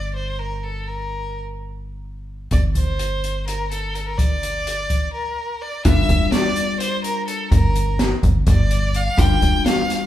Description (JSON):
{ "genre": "progressive instrumental, band music in an uneven meter", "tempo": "252 BPM (eighths)", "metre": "7/8", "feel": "straight", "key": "G minor", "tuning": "A4 = 444 Hz", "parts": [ { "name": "rich violin", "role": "melody", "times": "0.0-10.1 s", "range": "A4 to G5", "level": "-24 LUFS", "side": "equal", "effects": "none" }, { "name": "tight sequencer bass", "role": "bass", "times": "0.0-9.6 s", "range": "F1 to G1", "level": "-22 LUFS", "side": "equal", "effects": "none" }, { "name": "open jazz drum kit", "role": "drums", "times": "2.5-10.0 s", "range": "hi-hat, kick drum, snare drum", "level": "-20 LUFS", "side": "equal", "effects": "none" }, { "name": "vintage hollow-body jazz guitar", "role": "accompaniment", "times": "5.8-10.1 s", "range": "G3 to Bb4", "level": "-25 LUFS", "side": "left 4 dB", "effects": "none" } ], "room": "moderate large studio reverb, RT60 1.4 s", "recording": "band playing live in one room", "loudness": "-18 LUFS", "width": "side -12 dB against mid", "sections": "0.0-5.9 A section; 5.9-10.1 B section", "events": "break 5.1-5.9", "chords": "0.0 Gm; 5.9 Gm7", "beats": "0.13 0.37 0.61 | 0.85 1.09 1.32 1.56 1.80 2.04 2.28 | 2.52 2.76 3.00 3.23 3.47 3.71 3.95 | 4.19 4.42 4.66 4.90 5.14 5.38 5.62 | 5.86 6.09 6.33 6.57 6.81 7.04 7.28 | 7.52 7.76 8.00 8.23 8.47 8.71 8.95 | 9.19 9.43 9.66 9.90" }